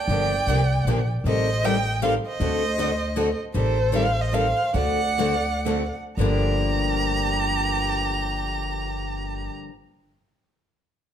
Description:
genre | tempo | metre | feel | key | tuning
acoustic string swing (jazz manouche) | 110-156 BPM | 3/4 | swing 63% on 8ths | G minor | A4 = 440 Hz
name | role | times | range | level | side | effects
warm violin | melody | 0.0-9.5 s | C5 to Bb5 | -26 LUFS | right 2 dB | none
warm violin | second line | 0.0-9.5 s | G4 to Eb5 | -32 LUFS | right 4 dB | none
picked steel-string acoustic guitar | accompaniment | 0.1-9.7 s | G2 to A4 | -28 LUFS | left 6 dB | none
picked steel-string acoustic guitar | accompaniment | 0.1-9.7 s | G2 to A4 | -31 LUFS | right 5 dB | none
upright bass | bass | 0.1-9.5 s | G1 to D2 | -26 LUFS | equal | none
room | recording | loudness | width
moderate large studio reverb, RT60 1.1 s | band playing live in one room | -21 LUFS | side -9 dB against mid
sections
0.0-1.2 A section; 1.2-6.2 B section; 6.2-9.5 C section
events
slowing down 3.5-6.2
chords
0.1 Gm7; 1.2 Am7b5; 2.4 D7b9; 3.5 Am7b5; 4.7 D7; 6.2 Gm7

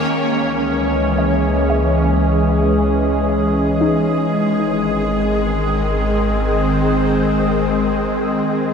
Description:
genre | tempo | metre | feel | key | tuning
ambient | 58 BPM | 4/4 | straight | Ab major | A4 = 440 Hz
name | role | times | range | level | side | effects
evolving wavetable pad | sustained chords | 0.0-8.7 s | Eb3 to G5 | -17 LUFS | equal | ensemble chorus, built-in reverb
round analog bass | bass | 0.0-8.7 s | Ab1 to Db2 | -22 LUFS | equal | none
bowed-like drone | drone | 0.0-8.7 s | Ab3 to Bb4 | -24 LUFS | equal | built-in reverb
glass harmonica | texture | 0.0-8.7 s | Eb5 to Eb6 | -28 LUFS | left 3 dB | none
soft round pluck | arpeggios | 1.2-6.0 s | Eb4 to Fb5 | -28 LUFS | left 2 dB | wide subtle chorus, ping-pong delay
room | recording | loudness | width
wet huge ambient reverb, RT60 8.6 s | dreamy mix soaked in reverb | -15 LUFS | side -6 dB against mid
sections
0.1-8.7 A section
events
filter sweep on ambient pad 0.1-8.7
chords
0.1 Dbm; 4.3 Ab

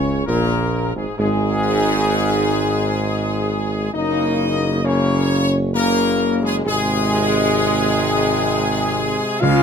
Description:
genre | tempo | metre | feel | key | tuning
classical | 66 BPM | 3/4 | straight | unclear | A4 = 440 Hz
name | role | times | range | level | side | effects
clear trumpet section | melody | 0.0-9.6 s | Ab4 to F5 | -22 LUFS | left 2 dB | none
clear trombone section | sustained chords | 0.0-9.6 s | Ab2 to Bb3 | -24 LUFS | equal | none
mellow French horn section | sustained chords | 0.0-9.6 s | Ab3 to F4 | -22 LUFS | left 4 dB | none
mellow tuba | bass | 0.0-9.6 s | Gb1 to Db2 | -20 LUFS | right 4 dB | none
timpani | percussion | 9.4-9.6 s | Db3 | -19 LUFS | right 3 dB | none
room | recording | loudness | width
light reverb | close, detailed microphones | -16 LUFS | side -7 dB against mid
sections
0.0-9.6 A section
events
none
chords
0.0 Db5; 3.9 Gb; 6.7 Ab

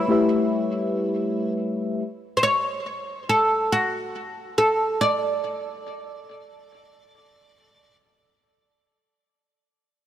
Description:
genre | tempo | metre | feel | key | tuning
R&B | free time | none | none | unclear | A4 = 440 Hz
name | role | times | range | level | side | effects
oud | melody | 0.0-8.0 s | E4 to D5 | -22 LUFS | right 1 dB | tape echo
mellow FM electric piano | accompaniment | 0.0-2.0 s | G3 to E5 | -22 LUFS | left 2 dB | chorus
room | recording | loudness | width
light reverb, studio reverb | dry, gritty hardware recording | -21 LUFS | side -11 dB against mid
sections
0.0-8.8 A section; 8.8-10.1 B section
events
none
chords
0.0 A7; 2.0 N.C.

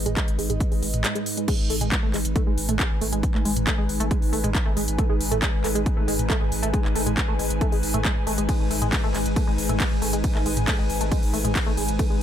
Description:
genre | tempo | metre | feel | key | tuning
driving peak-time techno | 137 BPM | 4/4 | straight | G# minor | A4 = 441 Hz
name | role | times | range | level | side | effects
saturated sub bass | bass | 0.0-12.2 s | G#1 | -28 LUFS | equal | overdrive, sidechain pumping, low-pass filter
deep dark ambient pad | drone | 0.0-12.2 s | G#2 to G#3 | -31 LUFS | left 1 dB | chorus, built-in reverb, sidechain pumping
airy breathy pad | texture | 0.0-12.2 s | D#4 to G#5 | -32 LUFS | left 1 dB | chorus, sidechain pumping
tight sequenced synth | riff | 0.1-12.2 s | G#3 to A3 | -30 LUFS | right 2 dB | chorus, phaser, sidechain pumping, digital delay
techno drum kit | drums | 0.1-12.1 s | crash cymbal, handclaps, hi-hat, ride cymbal, toms | -28 LUFS | equal | overdrive, sidechain pumping on hats, sidechain pumping on toms, sidechain pumping on cymbals
electronic kick drum | drums | 0.2-12.1 s | none | -24 LUFS | equal | overdrive
room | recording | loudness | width
light reverb | none | -21 LUFS | side -10 dB against mid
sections
0.0-1.5 A section; 1.5-12.2 B section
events
drop 1.5-12.2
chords
0.0 G#m

